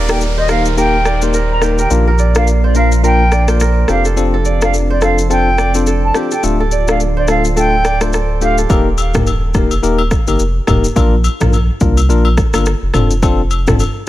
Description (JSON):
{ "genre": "afrobeats", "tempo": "106 BPM", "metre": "4/4", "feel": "swing 58% on 16ths", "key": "Bb major", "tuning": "A4 = 439 Hz", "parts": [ { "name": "warm analog pad", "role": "sustained chords", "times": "0.0-8.7 s", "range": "D3 to Bb4", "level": "-24 LUFS", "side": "right 1 dB", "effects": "chorus" }, { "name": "kora", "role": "riff", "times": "0.0-9.9 s", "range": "F4 to D5", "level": "-21 LUFS", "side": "right 6 dB", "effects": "tape echo" }, { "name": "sub bass with octave", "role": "bass", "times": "0.0-13.9 s", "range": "D1 to C2", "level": "-15 LUFS", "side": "equal", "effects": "none" }, { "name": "downlifter", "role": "sound effects", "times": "0.0-4.2 s", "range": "none", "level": "-28 LUFS", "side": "equal", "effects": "none" }, { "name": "silver concert flute", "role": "melody", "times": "0.1-8.6 s", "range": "D5 to Bb5", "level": "-18 LUFS", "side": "right 1 dB", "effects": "tape echo" }, { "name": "bell-like tine electric piano", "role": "accompaniment", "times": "0.1-13.8 s", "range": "A3 to Bb4", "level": "-18 LUFS", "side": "left 5 dB", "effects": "none" }, { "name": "deep house drum kit", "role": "drums", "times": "0.1-13.9 s", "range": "kick drum, rim click, shaker, toms", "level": "-17 LUFS", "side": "equal", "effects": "none" }, { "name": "agogo bells", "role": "percussion", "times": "8.7-13.9 s", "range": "none", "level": "-25 LUFS", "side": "left 6 dB", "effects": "none" } ], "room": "little or no reverb", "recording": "none", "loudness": "-11 LUFS", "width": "side -14 dB against mid", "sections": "0.0-8.7 A section; 8.7-14.1 B section", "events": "none", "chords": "0.0 Eb; 1.9 Bb; 3.9 F6; 6.4 Dm; 8.7 Eb; 11.0 Bb; 12.9 F6" }